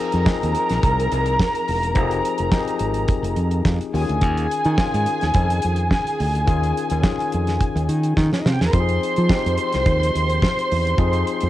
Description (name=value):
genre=disco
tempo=106 BPM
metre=4/4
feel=straight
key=F minor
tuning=A4 = 441 Hz
part: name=dark studio violin section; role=second line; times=0.0-11.5 s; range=Db4 to C6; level=-23 LUFS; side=equal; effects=cassette tape
part: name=barky tine electric piano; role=accompaniment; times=0.0-11.5 s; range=Eb3 to Ab4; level=-26 LUFS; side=left 8 dB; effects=cassette tape
part: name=modern bright fingered electric bass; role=bass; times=0.1-11.5 s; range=E1 to F3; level=-21 LUFS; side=right 1 dB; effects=none
part: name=damped 70s drum kit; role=drums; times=0.1-11.5 s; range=hi-hat, kick drum, snare drum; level=-21 LUFS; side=right 1 dB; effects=cassette tape
room=small room ambience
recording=home recording on cassette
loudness=-18 LUFS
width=side -14 dB against mid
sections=0.0-11.5 A section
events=drum fill 8.2-8.7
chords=0.0 Fm7; 3.9 Eb9sus4; 8.7 Fm7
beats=0.26 0.83 1.39 | 1.96 2.52 3.09 3.65 | 4.22 4.78 5.35 5.91 | 6.47 7.04 7.60 8.17 | 8.73 9.29 9.86 10.42 | 10.98